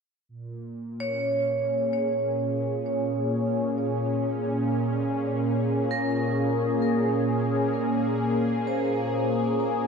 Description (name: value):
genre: ambient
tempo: free time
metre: none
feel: none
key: Bb minor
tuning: A4 = 440 Hz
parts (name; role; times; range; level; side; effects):
- warm analog pad; sustained chords; 0.3-9.9 s; Bb2 to Ab4; -25 LUFS; equal; chorus
- vibraphone with medium hard mallets; arpeggios; 1.0-9.9 s; Bb4 to Db5; -30 LUFS; equal; ping-pong delay
room: wet lush hall reverb, RT60 2.5 s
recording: dreamy mix soaked in reverb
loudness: -23 LUFS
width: side -5 dB against mid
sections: 0.3-9.9 A section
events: none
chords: 0.3 Bbm7